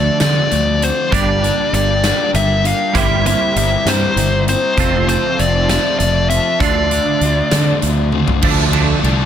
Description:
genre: indie rock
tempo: 66 BPM (dotted quarters)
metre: 6/8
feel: straight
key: D minor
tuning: A4 = 439 Hz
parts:
  - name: nasal lead guitar with a parked wah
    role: melody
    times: 0.0-7.8 s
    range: C5 to F5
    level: -17 LUFS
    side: left 1 dB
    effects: overdrive, plate reverb, tape echo
  - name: cranked stack guitar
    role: riff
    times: 0.0-9.1 s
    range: D3 to C5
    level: -21 LUFS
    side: right 11 dB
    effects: overdrive, ensemble chorus, tape echo
  - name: raw garage guitar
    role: riff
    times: 0.0-9.3 s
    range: D3 to D4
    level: -21 LUFS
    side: left 11 dB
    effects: overdrive
  - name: fuzz fingered electric bass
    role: bass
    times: 0.0-9.3 s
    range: F1 to D3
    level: -18 LUFS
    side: equal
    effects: overdrive
  - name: big rock drum kit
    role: drums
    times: 0.2-9.2 s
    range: crash cymbal, hi-hat, kick drum, ride cymbal, snare drum, toms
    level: -21 LUFS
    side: right 1 dB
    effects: none
  - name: airy breathy pad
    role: sustained chords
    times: 1.6-8.4 s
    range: E4 to C6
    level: -30 LUFS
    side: equal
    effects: chorus, plate reverb
room: light reverb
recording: none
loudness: -12 LUFS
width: side -9 dB against mid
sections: 0.0-8.4 A section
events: drum fill 8.1-8.4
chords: 0.0 Dm7; 1.1 Gm7; 2.9 C7/G; 4.8 Fmaj7; 6.6 Dm7; 8.4 Dm

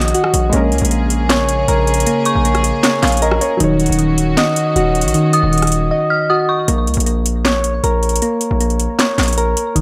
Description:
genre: hip hop, trap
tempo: 156 BPM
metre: 4/4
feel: half-time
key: Bb minor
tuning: A4 = 440 Hz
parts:
  - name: dark grand piano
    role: accompaniment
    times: 0.0-6.7 s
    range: Gb3 to F5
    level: -25 LUFS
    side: equal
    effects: none
  - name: warm studio string section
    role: sustained chords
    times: 0.0-6.7 s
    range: Db3 to Ab4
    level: -25 LUFS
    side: equal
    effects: none
  - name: soft electric-piano-like synth keys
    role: arpeggios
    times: 0.0-9.8 s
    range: Eb3 to Eb5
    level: -19 LUFS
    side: equal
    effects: chorus, delay
  - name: distorted 808-style bass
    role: bass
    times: 0.0-9.8 s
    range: Eb1 to Db2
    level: -20 LUFS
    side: equal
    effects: distortion
  - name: trap drum kit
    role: drums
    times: 0.0-9.8 s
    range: handclaps, hi-hat, rim click, snare drum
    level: -21 LUFS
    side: equal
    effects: overdrive
  - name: dark detuned synth bell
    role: second line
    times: 2.3-2.8, 5.3-6.7 s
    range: Db6 to F6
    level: -22 LUFS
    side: equal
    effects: chorus, delay
room: light reverb, digital ambience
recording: none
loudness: -15 LUFS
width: mono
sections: 0.0-6.7 A section; 6.7-9.8 B section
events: drums muted 5.9-6.7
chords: 0.0 Ebm7; 0.5 Bbm7; 3.6 Ebm7; 6.7 Bbm

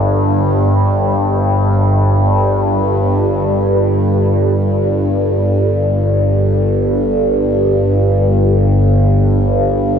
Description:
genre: ambient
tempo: free time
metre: none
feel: none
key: unclear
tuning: A4 = 440 Hz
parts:
  - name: overtone-sweeping drone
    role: solo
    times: 0.0-10.0 s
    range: G1 to G2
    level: -12 LUFS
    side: equal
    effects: chorus, built-in reverb, phaser, tape echo
room: wet huge ambient reverb, RT60 9.1 s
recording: none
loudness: -12 LUFS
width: side -7 dB against mid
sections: 0.0-2.7 A section; 2.7-10.0 B section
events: none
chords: none

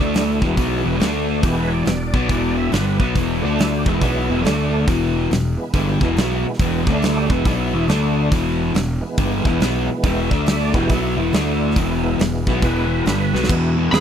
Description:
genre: blues rock power trio and southern rock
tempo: 139 BPM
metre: 4/4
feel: swing 64% on 8ths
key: unclear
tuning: A4 = 439 Hz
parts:
  - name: overdriven tonewheel organ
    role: sustained chords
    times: 0.0-14.0 s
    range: D3 to E5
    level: -26 LUFS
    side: right 3 dB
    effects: slow rotary speaker, chorus vibrato
  - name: overdriven semi-hollow guitar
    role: riff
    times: 0.0-14.0 s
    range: E2 to D4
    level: -20 LUFS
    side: left 2 dB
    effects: none
  - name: fuzz fingered electric bass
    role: bass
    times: 0.0-14.0 s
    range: E1 to E2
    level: -23 LUFS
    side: equal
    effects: overdrive
  - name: big rock drum kit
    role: drums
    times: 0.1-14.0 s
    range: crash cymbal, hi-hat, kick drum, snare drum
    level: -21 LUFS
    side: right 1 dB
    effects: none
  - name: lead guitar through a small cranked amp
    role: melody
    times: 13.9-14.0 s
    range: B5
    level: -18 LUFS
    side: right 2 dB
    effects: overdrive
  - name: bluesy overdriven lead guitar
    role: second line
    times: 13.9-14.0 s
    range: G#4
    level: -19 LUFS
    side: right 7 dB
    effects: distortion
room: little or no reverb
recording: dry, close 1970s-style studio recording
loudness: -16 LUFS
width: side -8 dB against mid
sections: 0.0-13.5 A section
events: tonewheel organ solo 0.0-13.5; drum fill 13.3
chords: 0.4 E; 1.0 D5; 1.4 E; 3.4 D5; 3.8 E; 4.5 D5; 4.9 E; 6.8 D5; 7.2 E; 7.9 D5; 8.3 E; 10.3 D5; 10.7 E; 11.3 D5; 11.8 E

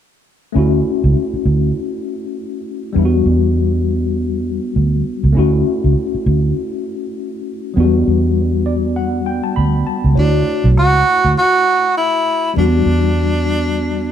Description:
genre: lush 1970s-style soul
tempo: 100 BPM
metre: 4/4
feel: swing 58% on 16ths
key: D major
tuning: A4 = 440 Hz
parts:
  - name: tine electric piano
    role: accompaniment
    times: 0.5-14.1 s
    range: F#3 to B5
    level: -18 LUFS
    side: left 3 dB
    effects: medium stereo tremolo
  - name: vintage muted fingered electric bass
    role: bass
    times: 0.6-14.1 s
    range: B1 to E2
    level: -15 LUFS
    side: right 1 dB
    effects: none
  - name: breathy tenor saxophone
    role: melody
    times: 10.2-14.1 s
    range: D4 to F#4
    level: -15 LUFS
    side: right 2 dB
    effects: none
room: moderate studio reverb, RT60 0.5 s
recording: band playing live in one room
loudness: -13 LUFS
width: side -9 dB against mid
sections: 0.6-10.2 A section; 10.2-14.1 B section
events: tine electric piano fill 8.4-10.2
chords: 0.6 Dmaj7; 3.0 Em7; 5.4 Dmaj7; 7.8 Em7; 10.2 Dmaj7; 12.6 Em7

